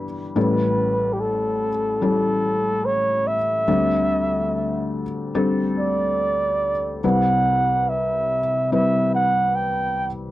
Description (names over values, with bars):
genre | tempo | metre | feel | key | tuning
acoustic folk-pop ballad | 72 BPM | 4/4 | straight | unclear | A4 = 435 Hz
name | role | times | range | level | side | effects
felt-muted upright piano | accompaniment | 0.0-10.3 s | G1 to B4 | -22 LUFS | left 2 dB | none
breathy flugelhorn | melody | 0.4-10.1 s | G4 to G5 | -21 LUFS | right 1 dB | none
room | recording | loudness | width
moderate booth ambience, RT60 0.2 s | dry, close 1970s-style studio recording | -19 LUFS | side -15 dB against mid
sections
0.0-10.3 A section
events
none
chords
0.4 A7; 3.7 D7sus4; 7.0 Cmaj7